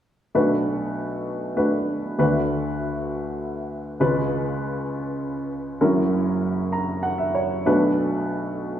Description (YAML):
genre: folk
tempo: 99 BPM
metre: 3/4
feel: straight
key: B minor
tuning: A4 = 441 Hz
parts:
  - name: warm upright piano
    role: solo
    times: 0.3-8.8 s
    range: F#1 to A#5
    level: -21 LUFS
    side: equal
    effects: none
room: wet large studio reverb, RT60 1.4 s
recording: heard from further back in the room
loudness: -21 LUFS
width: side -10 dB against mid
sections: 0.4-7.7 A section; 7.7-8.8 B section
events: none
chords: 0.4 Bm7; 2.2 D6; 4.0 C#7; 5.8 F#7; 7.7 Bm7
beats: | 0.35 0.96 1.57 | 2.18 2.79 3.39 | 4.00 4.60 5.21 | 5.82 6.42 7.04 | 7.66 8.27